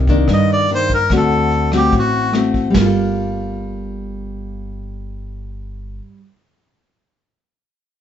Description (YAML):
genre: bossa nova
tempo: 146 BPM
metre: 4/4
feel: straight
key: G minor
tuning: A4 = 440 Hz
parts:
  - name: nylon-string guitar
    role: accompaniment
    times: 0.0-6.4 s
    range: G2 to A4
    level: -18 LUFS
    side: left 1 dB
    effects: none
  - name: upright bass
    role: bass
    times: 0.0-6.0 s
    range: G1 to G2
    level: -22 LUFS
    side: equal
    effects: none
  - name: vintage brush drum kit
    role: drums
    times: 0.1-2.8 s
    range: hi-hat, kick drum, rim click, snare drum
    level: -21 LUFS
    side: equal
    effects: none
  - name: melodica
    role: melody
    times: 0.3-2.3 s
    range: F#4 to Eb5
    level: -17 LUFS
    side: left 1 dB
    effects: none
room: wet studio reverb, RT60 0.5 s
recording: heard from further back in the room, nothing above 7.8 kHz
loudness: -13 LUFS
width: side -9 dB against mid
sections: 0.0-2.7 A section; 2.7-6.0 B section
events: melodica solo 0.0-2.7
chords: 0.0 Cm9; 1.1 D7; 2.7 Gm9